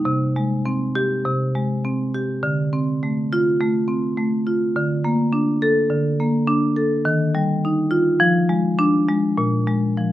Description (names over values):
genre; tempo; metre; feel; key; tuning
classical, contemporary piece for solo marimba; 103 BPM; 4/4; rubato; unclear; A4 = 440 Hz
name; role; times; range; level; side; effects
marimba with medium hard mallets; solo; 0.0-10.1 s; Bb2 to A4; -18 LUFS; equal; none
room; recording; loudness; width
light reverb; none; -18 LUFS; side -14 dB against mid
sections
0.0-10.1 A section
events
none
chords
0.1 Abmaj7/C; 2.4 Dm7; 4.7 Bbmaj7/D; 7.0 Ebadd9; 8.2 Fm6; 9.4 Bb7(no3)